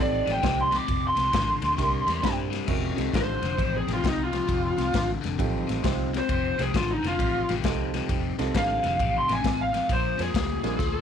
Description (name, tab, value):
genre	electric blues shuffle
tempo	133 BPM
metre	4/4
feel	swing 65% on 8ths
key	F mixolydian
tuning	A4 = 440 Hz
part	lead guitar through a small cranked amp	melody	0.0-11.0 s	Eb4 to D6	-26 LUFS	right 1 dB	overdrive
part	warm upright piano	accompaniment	0.0-10.8 s	G3 to C5	-32 LUFS	right 17 dB	none
part	overdriven electric guitar	riff	0.0-11.0 s	F2 to G3	-31 LUFS	left 11 dB	phaser
part	vintage muted fingered electric bass	bass	0.0-11.0 s	F1 to G2	-31 LUFS	right 2 dB	none
part	raw garage drum kit	drums	0.0-10.9 s	crash cymbal, kick drum, ride cymbal, snare drum	-29 LUFS	left 2 dB	none
room	studio ambience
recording	1960s-style stereo with parts hard left and right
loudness	-23 LUFS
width	side -8 dB against mid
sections	0.0-2.7 A section; 2.7-11.0 B section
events	lead electric guitar solo 2.7-11.0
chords	0.0 F7; 1.8 C7; 2.7 F7; 9.9 Bb7